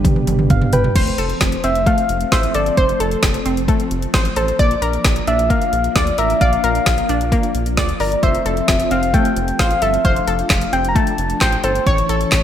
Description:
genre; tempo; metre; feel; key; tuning
synth-pop; 132 BPM; 4/4; straight; unclear; A4 = 440 Hz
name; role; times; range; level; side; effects
soft electric-piano-like synth keys; accompaniment; 0.0-0.9 s; G3 to G5; -25 LUFS; right 4 dB; chorus
ensemble organ-string; sustained chords; 0.0-12.4 s; D3 to D4; -24 LUFS; left 1 dB; ensemble chorus
round analog bass; bass; 0.0-12.4 s; F1 to D2; -23 LUFS; equal; none
deep house drum kit; drums; 0.0-12.4 s; crash cymbal, handclaps, hi-hat, kick drum, snare drum, toms; -18 LUFS; equal; gated reverb
soft struck synth lead; melody; 0.7-12.4 s; A4 to Bb5; -19 LUFS; left 1 dB; chorus
analog pluck; arpeggios; 1.0-12.3 s; A3 to D5; -23 LUFS; left 2 dB; chorus, digital delay
room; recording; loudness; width
moderate plate reverb, RT60 2.3 s; bright 1980s-style digital production; -14 LUFS; side -10 dB against mid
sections
1.0-12.4 A section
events
drum fill 0.0-1.0; synth keys fill 0.3-1.0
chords
0.0 G; 1.0 F; 4.6 Bb; 8.2 F; 11.9 A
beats
0.05 0.50 | 0.96 1.41 1.87 2.32 | 2.77 3.23 3.68 4.14 | 4.59 5.05 5.50 5.96 | 6.41 6.87 7.32 7.78 | 8.23 8.68 9.14 9.59 | 10.05 10.50 10.96 11.41 | 11.87 12.32

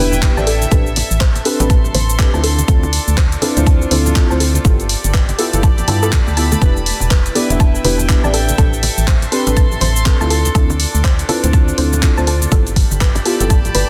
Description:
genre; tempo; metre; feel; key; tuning
deep house; 122 BPM; 4/4; swing 60% on 16ths; A minor; A4 = 440 Hz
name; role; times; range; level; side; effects
soft round pluck; arpeggios; 0.0-13.9 s; A3 to A5; -27 LUFS; equal; chorus, sidechain pumping, dub echo
deep mellow chord stab; stabs; 0.0-13.5 s; B3 to E5; -23 LUFS; equal; chorus, sidechain pumping, dub echo
organ-like FM bass; bass; 0.0-13.8 s; E1 to G2; -20 LUFS; equal; sidechain pumping
warm studio string section; texture; 0.0-13.9 s; D4 to C6; -27 LUFS; equal; sidechain pumping
house drum kit; drums; 0.1-13.9 s; handclaps, hi-hat, shaker; -23 LUFS; equal; none
congas; percussion; 0.1-13.9 s; none; -28 LUFS; equal; none
electronic kick drum; drums; 0.2-13.6 s; none; -15 LUFS; equal; none
room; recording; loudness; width
light reverb; dense, heavily limited modern master; -14 LUFS; mono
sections
0.0-13.9 A section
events
filter sweep on synth arpeggio sound 0.0-13.9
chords
0.5 Am11; 2.4 Dm9; 4.7 G13; 6.6 Em7; 8.3 Am11; 10.3 Dm9; 12.5 G13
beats
0.22 | 0.71 1.21 1.70 2.19 | 2.68 3.17 3.67 4.16 | 4.65 5.14 5.63 6.12 | 6.62 7.11 7.60 8.09 | 8.58 9.08 9.57 10.06 | 10.55 11.04 11.54 12.03 | 12.52 13.01 13.50

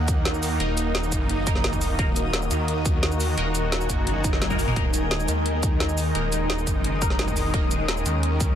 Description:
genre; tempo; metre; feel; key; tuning
dark technical drum and bass; 173 BPM; 4/4; straight; Eb minor; A4 = 439 Hz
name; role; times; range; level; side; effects
sweeping resonant pad; sustained chords; 0.0-8.6 s; Eb3 to Gb4; -30 LUFS; left 1 dB; chorus, sidechain pumping
snarling distorted saw bass; bass; 0.0-8.6 s; Eb1 to Eb2; -26 LUFS; equal; distortion, sidechain pumping
granular cloud pad; texture; 0.0-8.6 s; Eb4 to Eb6; -29 LUFS; equal; built-in reverb, sidechain pumping
drum and bass drum kit; drums; 0.1-8.5 s; hi-hat, shaker, snare drum, toms; -28 LUFS; equal; none
electronic kick drum; drums; 0.1-8.5 s; none; -25 LUFS; equal; none
band-passed chord stab; stabs; 0.6-7.6 s; Bb3 to Bb4; -34 LUFS; right 1 dB; phaser, wide subtle chorus, digital delay
swell; sound effects; 4.2-4.8 s; none; -34 LUFS; right 3 dB; none
room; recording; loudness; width
light reverb; dense, heavily limited modern master, faint mains hum; -21 LUFS; side -10 dB against mid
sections
0.0-8.6 A section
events
swell 4.2-4.8; drum fill 4.4-4.8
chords
0.0 Eb5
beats
0.25 | 0.60 0.95 1.29 1.64 | 1.99 2.33 2.68 3.03 | 3.38 3.72 4.07 4.42 | 4.76 5.11 5.46 5.80 | 6.15 6.50 6.84 7.19 | 7.54 7.88 8.23

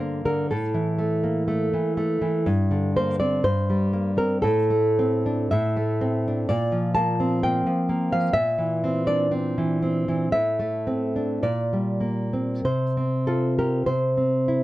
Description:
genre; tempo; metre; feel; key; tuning
romantic piece for solo classical guitar; 46-65 BPM; 2/4; rubato; unclear; A4 = 438 Hz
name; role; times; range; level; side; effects
nylon-string guitar; solo; 0.0-14.6 s; G2 to A5; -21 LUFS; equal; none
room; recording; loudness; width
little or no reverb; dark, warm production; -21 LUFS; side -16 dB against mid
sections
0.0-14.6 A section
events
none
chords
0.5 A5; 2.5 Gm; 3.4 Gmadd11; 4.4 Amadd11; 6.5 Bb5; 8.3 C7/Bb; 10.4 Amadd11; 11.4 Gm/Bb; 12.6 Csus4; 13.9 C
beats
| 0.48 1.47 | 2.47 3.45 | 4.43 5.52 | 6.47 7.40 | 8.35 9.34 | 10.35 11.43 | 12.64 13.88

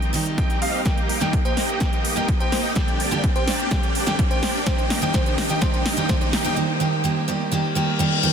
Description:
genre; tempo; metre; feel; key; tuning
EDM, festival progressive house; 126 BPM; 4/4; straight; Eb major; A4 = 440 Hz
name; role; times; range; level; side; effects
picked steel-string acoustic guitar; accompaniment; 0.0-8.3 s; C3 to G4; -25 LUFS; right 3 dB; sidechain pumping, ping-pong delay
bright grand piano; arpeggios; 0.0-6.6 s; F5 to G5; -32 LUFS; left 1 dB; sidechain pumping, low-pass filter, ping-pong delay
supersaw chords; riff; 0.0-6.6 s; Bb3 to G5; -27 LUFS; equal; ensemble chorus, sidechain pumping, low-pass filter, ping-pong delay
big-room dance drum kit; drums; 0.0-6.4 s; hi-hat, snare drum; -28 LUFS; equal; overdrive
riser and reverse cymbal; sound effects; 0.1-8.3 s; none; -30 LUFS; left 1 dB; none
electronic kick drum; drums; 0.4-6.2 s; none; -22 LUFS; equal; overdrive
bell-like FM electric piano; melody; 1.5-6.3 s; C5; -34 LUFS; right 1 dB; chorus, phaser, ping-pong delay
room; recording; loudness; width
light reverb, digital ambience; dense, heavily limited modern master; -19 LUFS; side -7 dB against mid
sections
0.0-8.3 A section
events
build-up 0.0-8.3; riser 0.1-6.6; drum fill 0.9-6.6; reverse cymbal 7.7-8.3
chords
0.0 Cm; 0.9 Eb; 2.8 Bb; 4.7 Eb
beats
0.38 | 0.86 1.33 1.81 2.29 | 2.76 3.24 3.71 4.19 | 4.67 5.14 5.62 6.09 | 6.57 7.05 7.52 8.00

